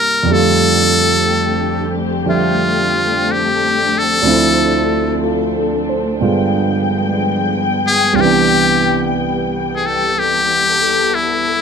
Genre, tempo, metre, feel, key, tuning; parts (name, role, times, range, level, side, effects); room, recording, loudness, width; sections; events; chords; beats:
jazz ballad; 61 BPM; 4/4; swing 67% on 8ths; C major; A4 = 441 Hz
trumpet with metal mute; melody; 0.0-11.6 s; E4 to Bb4; -14 LUFS; left 2 dB
warm grand piano; accompaniment; 0.0-11.6 s; C2 to E5; -17 LUFS; right 4 dB
dark studio string section; sustained chords; 0.3-11.6 s; E3 to G5; -20 LUFS; left 4 dB
light reverb; close, detailed microphones; -12 LUFS; side -6 dB against mid
0.0-11.6 A section
0.3 F69; 4.2 Dm7; 6.2 G7b9; 8.2 Cmaj7
| 0.28 1.27 2.26 3.25 | 4.24 5.22 6.21 7.19 | 8.18 9.16 10.14 11.13